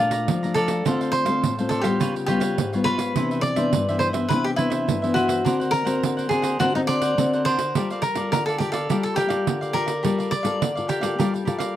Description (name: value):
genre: samba and choro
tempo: 104 BPM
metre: 4/4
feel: straight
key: G minor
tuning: A4 = 440 Hz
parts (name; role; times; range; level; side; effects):
- cavaquinho; melody; 0.0-11.8 s; Eb4 to D5; -24 LUFS; left 1 dB; none
- cavaquinho; accompaniment; 0.0-11.8 s; D4 to Bb5; -30 LUFS; right 2 dB; none
- nylon-string guitar; accompaniment; 0.0-11.7 s; G2 to A4; -25 LUFS; left 3 dB; none
- pandeiro; percussion; 0.1-11.8 s; none; -27 LUFS; right 7 dB; none
room: light reverb, studio reverb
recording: dry, close 1970s-style studio recording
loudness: -20 LUFS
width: side -12 dB against mid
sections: 0.0-11.8 A section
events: none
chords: 0.0 Bbmaj7; 0.9 Dm7; 2.0 C#7#11; 3.2 Cmaj9; 5.5 Daug7; 7.8 Gm9